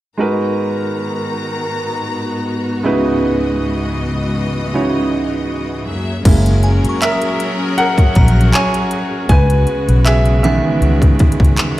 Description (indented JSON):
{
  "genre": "contemporary R&B",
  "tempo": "79 BPM",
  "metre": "4/4",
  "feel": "swing 54% on 16ths",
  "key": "unclear",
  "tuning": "A4 = 440 Hz",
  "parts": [
    { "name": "clear baby grand piano", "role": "accompaniment", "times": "0.2-11.8 s", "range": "C#3 to G#5", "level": "-18 LUFS", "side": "right 2 dB", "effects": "none" },
    { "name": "clear studio string section", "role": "sustained chords", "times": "0.2-11.8 s", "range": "C#2 to A#5", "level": "-20 LUFS", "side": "left 1 dB", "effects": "none" },
    { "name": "vintage muted fingered electric bass", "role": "bass", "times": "6.3-11.6 s", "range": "F#1 to C#2", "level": "-13 LUFS", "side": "equal", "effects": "none" },
    { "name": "trap drum kit", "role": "drums", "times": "6.3-11.8 s", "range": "crash cymbal, handclaps, hi-hat, kick drum", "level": "-13 LUFS", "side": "equal", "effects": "none" },
    { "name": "glassy synth bell", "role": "texture", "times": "6.6-11.8 s", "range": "F#5 to D#6", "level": "-31 LUFS", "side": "left 1 dB", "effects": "chorus, tremolo, digital delay" }
  ],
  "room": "digital ambience",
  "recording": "played on a big sound system in a bare room, stone room reverb",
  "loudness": "-13 LUFS",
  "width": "side -15 dB against mid",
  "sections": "0.2-6.3 A section; 6.3-11.8 B section",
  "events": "grand piano solo 6.3-11.8",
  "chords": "0.2 G#m9; 2.8 C#m11; 5.9 F#7; 9.3 C#m7"
}